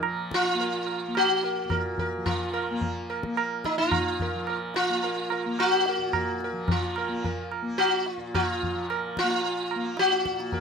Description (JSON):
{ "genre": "indian classical, Hindustani", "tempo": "109 BPM", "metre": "4/4", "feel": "straight", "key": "unclear", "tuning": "A4 = 441 Hz", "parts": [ { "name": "tanpura", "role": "drone", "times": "0.0-10.6 s", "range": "Bb2 to Bb3", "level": "-34 LUFS", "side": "left 2 dB", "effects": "none" }, { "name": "tabla", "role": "percussion", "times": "0.0-10.6 s", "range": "none", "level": "-30 LUFS", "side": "right 2 dB", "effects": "none" }, { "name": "sitar", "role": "melody", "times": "0.3-10.6 s", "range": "Eb4 to Bb4", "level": "-26 LUFS", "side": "left 1 dB", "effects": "none" } ], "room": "light reverb", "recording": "minimal, uncompressed stereo recording", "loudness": "-24 LUFS", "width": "side -6 dB against mid", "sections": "0.0-10.6 A section", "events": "none", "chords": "none", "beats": "| 0.03 0.59 1.15 1.71 | 2.27 2.82 3.38 3.93 | 4.49 5.04 5.59 6.14 | 6.69 7.24 7.79 8.34 | 8.89 9.44 9.98 10.53" }